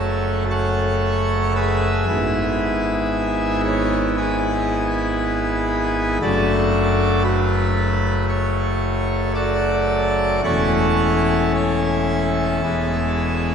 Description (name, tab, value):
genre	classical, chorale-style piece for pipe organ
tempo	53-59 BPM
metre	4/4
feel	rubato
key	unclear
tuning	A4 = 439 Hz
part	pipe organ, full organ	solo	0.0-13.5 s	E1 to F#5	-17 LUFS	equal	none
room	wet church reverb, RT60 2.8 s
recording	none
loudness	-17 LUFS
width	side -7 dB against mid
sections	0.0-13.5 A section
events	none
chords	0.0 F#m; 2.1 E/G#; 6.2 D/F#; 10.4 A/E; 12.6 E